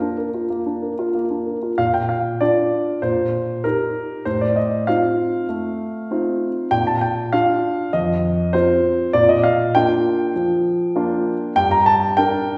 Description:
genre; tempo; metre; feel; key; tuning
classical-period piano sonatina; 98 BPM; 4/4; rubato; Bb major; A4 = 440 Hz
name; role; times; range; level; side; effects
warm grand piano; solo; 0.0-12.6 s; F2 to Bb5; -19 LUFS; equal; none
room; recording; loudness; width
wet recital hall reverb, RT60 1.4 s; recorded in a church or concert hall; -19 LUFS; mono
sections
0.0-1.8 A section; 1.8-12.6 B section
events
none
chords
0.0 Bb; 3.0 Eb/Bb; 4.3 F7/A; 6.7 Bb; 7.9 F5; 9.1 Bb; 11.6 Gm

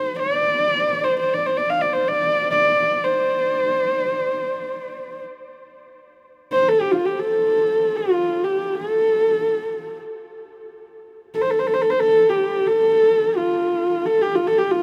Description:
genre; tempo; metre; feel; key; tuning
mongolian traditional, Mongolian folk; free time; none; none; unclear; A4 = 440 Hz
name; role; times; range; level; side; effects
dark horsehead fiddle; solo; 0.0-14.8 s; F4 to F5; -20 LUFS; equal; none
room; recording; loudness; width
moderate huge ambient reverb, RT60 7.5 s; none; -20 LUFS; mono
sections
0.0-14.8 A section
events
slowing down 13.2-14.8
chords
none

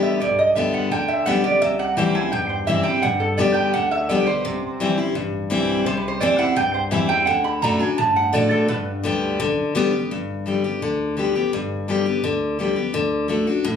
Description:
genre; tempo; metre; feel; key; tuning
country; 170 BPM; 4/4; straight; G major; A4 = 441 Hz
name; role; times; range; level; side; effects
lap resonator guitar; second line; 0.0-8.8 s; A4 to B5; -21 LUFS; right 4 dB; none
picked steel-string acoustic guitar; accompaniment; 0.0-13.8 s; G2 to G4; -21 LUFS; left 3 dB; none
punchy sub bass; bass; 0.0-13.8 s; G1 to A2; -31 LUFS; right 1 dB; none
room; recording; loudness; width
moderate large studio reverb, RT60 0.8 s; recorded on a phone in the room, club reverb; -18 LUFS; side -7 dB against mid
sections
0.0-10.1 A section; 10.1-13.8 B section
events
resonator guitar played with a steel bar solo 0.0-10.1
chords
0.0 G; 1.6 C; 3.0 G; 4.4 C; 7.3 D; 8.7 G; 12.9 D

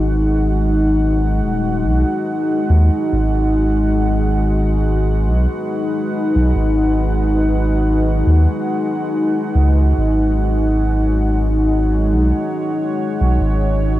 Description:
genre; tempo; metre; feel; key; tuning
ambient dub; 70 BPM; 4/4; swing 54% on 16ths; unclear; A4 = 444 Hz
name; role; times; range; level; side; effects
deep dark ambient pad; sustained chords; 0.0-14.0 s; G#3 to F#5; -18 LUFS; equal; chorus, built-in reverb, cassette tape
soft dub sub bass; bass; 0.0-14.0 s; D#1 to D#2; -16 LUFS; equal; none
room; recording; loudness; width
moderate booth ambience, RT60 0.2 s; home recording on cassette; -14 LUFS; side -15 dB against mid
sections
0.0-14.0 A section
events
none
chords
0.0 G#m7; 3.1 B6/G#

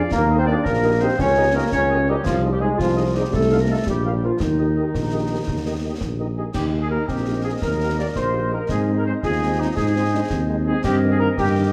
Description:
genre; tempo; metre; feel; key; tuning
military-style march for wind band; 112 BPM (dotted quarters); 6/8; straight; Eb major; A4 = 438 Hz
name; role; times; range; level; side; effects
dark woodwind section; second line; 0.0-11.7 s; Eb4 to Eb5; -30 LUFS; equal; none
mellow tuba; bass; 0.0-11.7 s; Bb1 to Ab2; -25 LUFS; equal; none
dark trombone section; sustained chords; 0.1-6.3 s; Eb3 to D4; -25 LUFS; equal; none
concert snare drum, concert bass drum and clash cymbals; drums; 0.1-11.7 s; none; -32 LUFS; equal; none
dark trumpet section; melody; 0.3-11.7 s; Eb4 to F5; -29 LUFS; equal; none
mellow French horn section; accompaniment; 0.3-11.6 s; Eb3 to C5; -32 LUFS; equal; none
mellow euphonium; second line; 6.5-11.7 s; Bb3 to F4; -29 LUFS; equal; none
room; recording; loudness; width
wet recital hall reverb, RT60 1.3 s; none; -21 LUFS; mono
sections
0.0-6.5 A section; 6.5-11.7 A section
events
none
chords
0.1 Eb; 1.2 Eb7/Db; 2.3 Ab/C; 3.3 F7/C; 3.9 Bb; 4.4 Eb; 8.7 Ab; 10.8 Eb/G

